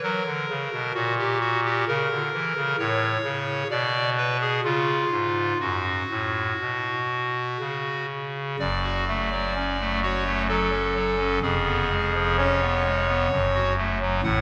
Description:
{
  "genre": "classical, chorale-style piece for pipe organ",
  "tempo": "60-66 BPM",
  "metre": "3/4",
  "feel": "rubato",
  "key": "F# minor",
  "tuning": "A4 = 440 Hz",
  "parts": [
    { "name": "pipe organ, clarinet reed", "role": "solo", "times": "0.0-14.4 s", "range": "E#1 to F#5", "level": "-24 LUFS", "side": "equal", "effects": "none" }
  ],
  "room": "wet church reverb, RT60 3.3 s",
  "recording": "none",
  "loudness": "-25 LUFS",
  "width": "mono",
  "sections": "0.0-8.6 A section; 8.6-14.4 B section",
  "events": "none",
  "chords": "0.0 F#; 2.8 A; 3.7 N.C.; 4.6 C#; 5.6 F#m; 11.4 C#7/E#; 13.3 F#m"
}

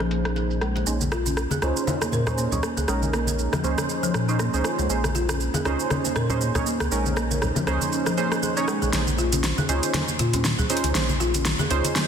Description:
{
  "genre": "afro house",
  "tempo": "119 BPM",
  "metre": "4/4",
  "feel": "swing 56% on 16ths",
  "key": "Bb minor",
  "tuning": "A4 = 440 Hz",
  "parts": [
    { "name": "dark analog pad", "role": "sustained chords", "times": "0.0-12.1 s", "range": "Bb3 to C5", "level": "-36 LUFS", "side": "right 2 dB", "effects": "chorus" },
    { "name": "folk marimba with medium hard mallets", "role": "arpeggios", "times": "0.0-12.0 s", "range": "F3 to Bb4", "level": "-28 LUFS", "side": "left 2 dB", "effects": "low-pass filter, ping-pong delay" },
    { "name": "warm sub bass", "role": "bass", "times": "0.0-11.8 s", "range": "Bb1 to Bb2", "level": "-26 LUFS", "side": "equal", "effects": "none" },
    { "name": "deep house drum kit", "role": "drums", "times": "0.0-12.1 s", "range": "hi-hat, rim click, shaker, snare drum", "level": "-27 LUFS", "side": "right 1 dB", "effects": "overdrive, low-pass filter on hats, low-pass filter on perc, low-pass filter on snare" },
    { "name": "congas", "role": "percussion", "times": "0.0-11.9 s", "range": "none", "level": "-30 LUFS", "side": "left 2 dB", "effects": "none" },
    { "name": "warm analog keys", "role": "stabs", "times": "0.9-12.1 s", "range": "Db4 to Db5", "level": "-28 LUFS", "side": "right 5 dB", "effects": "chorus, low-pass filter, ping-pong delay" }
  ],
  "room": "moderate lush hall reverb, RT60 2.2 s",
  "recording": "dense, heavily limited modern master",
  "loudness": "-21 LUFS",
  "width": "side -8 dB against mid",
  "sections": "0.9-12.1 A section",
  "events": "build-up 0.9-12.1; filter sweep on marimba 0.9-12.1; filter sweep on synth keys 0.9-12.1; drum fill 8.9-12.1",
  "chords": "0.0 Bbm11"
}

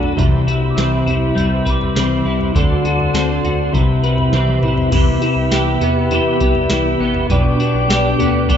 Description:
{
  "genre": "dream pop",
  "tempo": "101 BPM",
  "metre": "4/4",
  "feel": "straight",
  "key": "C lydian",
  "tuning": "A4 = 436 Hz",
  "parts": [
    { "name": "twelve-string electric guitar", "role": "accompaniment", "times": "0.0-8.6 s", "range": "B2 to B4", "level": "-22 LUFS", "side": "right 6 dB", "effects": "harmonic tremolo, ensemble chorus" },
    { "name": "mellow tonewheel organ", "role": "sustained chords", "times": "0.0-8.6 s", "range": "C4 to D6", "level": "-20 LUFS", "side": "equal", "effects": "slow rotary speaker" },
    { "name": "clean electric guitar", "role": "arpeggios", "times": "0.0-8.6 s", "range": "B2 to B4", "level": "-17 LUFS", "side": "left 3 dB", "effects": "ensemble chorus, tape echo" },
    { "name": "saturated sub bass", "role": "bass", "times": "0.0-8.6 s", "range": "A1 to E2", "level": "-24 LUFS", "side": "equal", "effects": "none" },
    { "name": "booming analog drum machine", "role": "drums", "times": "0.0-8.6 s", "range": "crash cymbal, kick drum, snare drum, tambourine, toms", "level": "-20 LUFS", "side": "right 1 dB", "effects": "none" },
    { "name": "celesta", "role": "texture", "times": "0.0-8.6 s", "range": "A4 to E6", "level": "-32 LUFS", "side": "left 1 dB", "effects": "tape echo" }
  ],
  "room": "light reverb, digital ambience",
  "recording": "rough home demo mix, nothing above 7.8 kHz",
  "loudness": "-13 LUFS",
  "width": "side -8 dB against mid",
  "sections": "0.0-4.9 A section; 4.9-8.6 B section",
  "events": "drum fill 4.3-4.9",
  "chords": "0.2 Cmaj7; 2.5 D7; 3.7 Cmaj7; 7.3 G/B"
}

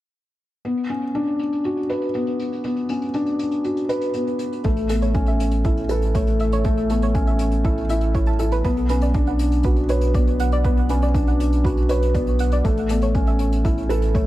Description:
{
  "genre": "piano and strings electronica",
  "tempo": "120 BPM",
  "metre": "4/4",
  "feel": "straight",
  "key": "B minor",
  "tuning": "A4 = 440 Hz",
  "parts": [
    { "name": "felt-muted upright piano", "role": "riff", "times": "0.6-14.3 s", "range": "A3 to B4", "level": "-22 LUFS", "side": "left 1 dB", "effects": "digital delay" },
    { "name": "hi-hat", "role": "drums", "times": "0.7-14.3 s", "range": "none", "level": "-42 LUFS", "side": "left 4 dB", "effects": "low-pass filter on hats, low-pass filter on room" },
    { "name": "soft round pluck", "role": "arpeggios", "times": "4.6-14.2 s", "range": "A4 to A5", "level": "-29 LUFS", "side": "right 2 dB", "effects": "chorus, sidechain pumping, digital delay" },
    { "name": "warm sub bass", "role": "bass", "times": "4.6-14.3 s", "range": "A1 to B1", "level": "-21 LUFS", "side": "equal", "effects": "sidechain pumping" },
    { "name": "electronic kick drum", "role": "drums", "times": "4.6-14.2 s", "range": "none", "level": "-22 LUFS", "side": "right 1 dB", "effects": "none" }
  ],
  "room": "light reverb, studio reverb",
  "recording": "none",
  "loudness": "-18 LUFS",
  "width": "side -15 dB against mid",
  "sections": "0.7-8.7 A section; 8.7-14.3 B section",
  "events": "none",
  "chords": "0.7 Bmadd9; 4.7 Aadd9; 8.7 Bmadd9; 12.7 Aadd9"
}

